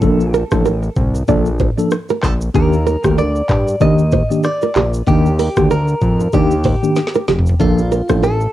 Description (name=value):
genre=afrobeats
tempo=95 BPM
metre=4/4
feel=swing 58% on 16ths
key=unclear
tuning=A4 = 440 Hz
part: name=mellow tine electric piano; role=accompaniment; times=0.0-8.2 s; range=Eb3 to A4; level=-17 LUFS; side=left 1 dB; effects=fast stereo tremolo, cassette tape
part: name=fat analog bass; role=bass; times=0.0-8.5 s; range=F1 to G2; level=-18 LUFS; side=equal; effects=none
part: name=afro-pop drum kit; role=drums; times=0.0-8.5 s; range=handclaps, hi-hat, kick drum, rim click, shaker, snare drum, toms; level=-18 LUFS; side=equal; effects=cassette tape
part: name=congas and bongos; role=percussion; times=0.0-8.4 s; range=none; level=-25 LUFS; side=left 7 dB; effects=none
part: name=nylon-string guitar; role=riff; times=0.3-8.4 s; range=G4 to D5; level=-20 LUFS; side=right 7 dB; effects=cassette tape, tape echo
part: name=direct-recorded clean electric guitar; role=melody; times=2.6-8.5 s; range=F4 to Eb5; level=-22 LUFS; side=equal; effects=cassette tape, plate reverb, tape echo
room=light reverb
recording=home recording on cassette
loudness=-13 LUFS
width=side -14 dB against mid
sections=0.0-8.5 A section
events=drum fill 7.0-7.6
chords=0.0 Bbmaj7; 2.5 Ebmaj7; 7.6 Bbmaj7